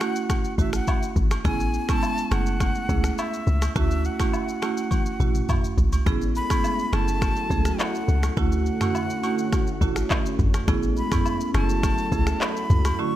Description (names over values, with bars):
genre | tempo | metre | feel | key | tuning
afrobeats | 104 BPM | 4/4 | straight | F# minor | A4 = 443 Hz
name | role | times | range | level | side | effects
breathy bright jazz flute | melody | 0.0-13.2 s | E5 to C#6 | -30 LUFS | left 1 dB | tape echo
marimba with medium hard mallets | accompaniment | 0.0-13.2 s | D3 to G#4 | -28 LUFS | right 5 dB | none
afro-pop drum kit | drums | 0.0-13.0 s | finger snaps, handclaps, kick drum, rim click, shaker, toms | -25 LUFS | equal | none
agogo bells and woodblock | percussion | 0.0-13.0 s | none | -34 LUFS | equal | none
deep log drum bass | bass | 0.6-12.9 s | F#1 to D2 | -23 LUFS | left 1 dB | none
warm analog pad | sustained chords | 6.1-13.2 s | D3 to A4 | -32 LUFS | left 1 dB | chorus
room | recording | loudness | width
light reverb | none | -21 LUFS | side -13 dB against mid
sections
0.0-6.1 A section; 6.1-13.2 B section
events
drum fill 4.9-6.1; break 13.0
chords
0.0 Dmaj7 (rootless); 1.4 Amaj9; 2.3 F#m9; 3.8 Dmaj7; 6.1 Amaj9; 6.9 F#m9; 8.4 Dmaj7; 10.7 Amaj9; 11.5 F#m9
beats
0.30 0.87 | 1.45 2.03 2.60 3.18 | 3.76 4.33 4.91 5.49 | 6.07 6.64 7.22 7.80 | 8.37 8.95 9.53 10.10 | 10.68 11.26 11.83 12.41 | 12.99